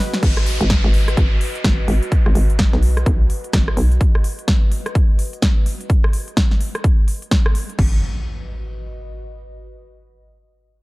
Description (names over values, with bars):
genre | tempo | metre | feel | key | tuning
bass house | 127 BPM | 4/4 | swing 61% on 16ths | G# minor | A4 = 438 Hz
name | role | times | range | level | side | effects
warbly tape-like pad | texture | 0.0-9.6 s | F#4 to D#5 | -33 LUFS | equal | chorus, built-in reverb, sidechain pumping
big-room dance drum kit | drums | 0.1-7.9 s | crash cymbal, hi-hat, rim click, snare drum | -24 LUFS | equal | overdrive
hollow knocking FM bass | bass | 0.2-4.0, 7.8-8.0 s | G#1 to B1 | -17 LUFS | equal | sidechain pumping
electronic kick drum | drums | 0.2-7.9 s | none | -16 LUFS | equal | overdrive
downlifter and impact | sound effects | 0.2-4.0, 7.8-9.7 s | none | -29 LUFS | equal | none
room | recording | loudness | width
little or no reverb | dark, warm production | -15 LUFS | side -21 dB against mid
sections
0.2-7.8 A section; 7.8-9.7 B section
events
drum fill 0.0; fade-out on ambient pad 0.2-7.8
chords
0.2 G#m; 7.8 G#m (rootless)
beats
| 0.23 0.70 1.17 1.65 | 2.12 2.59 3.06 3.54 | 4.01 4.48 4.95 5.42 | 5.90 6.37 6.84 7.31 | 7.79 8.26 8.73 9.20